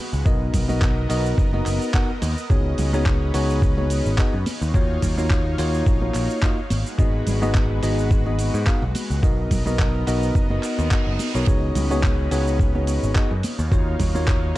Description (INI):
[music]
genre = nu-disco, nu disco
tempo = 107 BPM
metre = 4/4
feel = swing 55% on 16ths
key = Db mixolydian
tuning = A4 = 440 Hz
[part]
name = lush unison pad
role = sustained chords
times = 0.0-14.6 s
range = Ab3 to F5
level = -32 LUFS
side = left 1 dB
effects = chorus, sidechain pumping
[part]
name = modern bright picked electric bass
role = bass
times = 0.1-14.5 s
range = Gb1 to Ab2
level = -23 LUFS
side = equal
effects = none
[part]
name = dusty soul sampler-style drum kit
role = drums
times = 0.1-14.6 s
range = handclaps, hi-hat, shaker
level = -32 LUFS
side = right 1 dB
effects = none
[part]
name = bell-like tine electric piano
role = accompaniment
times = 0.3-14.6 s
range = Bb3 to Gb5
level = -26 LUFS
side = left 1 dB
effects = sidechain pumping, tape echo
[part]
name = electronic kick drum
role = drums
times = 0.3-14.4 s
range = none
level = -20 LUFS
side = equal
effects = none
[part]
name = congas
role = percussion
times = 0.5-14.2 s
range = none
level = -31 LUFS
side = right 1 dB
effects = none
[part]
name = reverse cymbal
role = sound effects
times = 10.6-11.5 s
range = none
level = -35 LUFS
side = right 6 dB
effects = none
[sound]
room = little or no reverb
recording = dark, warm production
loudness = -18 LUFS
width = side -16 dB against mid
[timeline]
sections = 0.0-14.6 A section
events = reverse cymbal 10.6-11.5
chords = 0.3 Cbmaj7; 2.5 Db9sus4; 4.5 Ebm9; 6.7 Abm7; 9.2 Cbmaj7; 11.5 Db9sus4; 13.4 Ebm9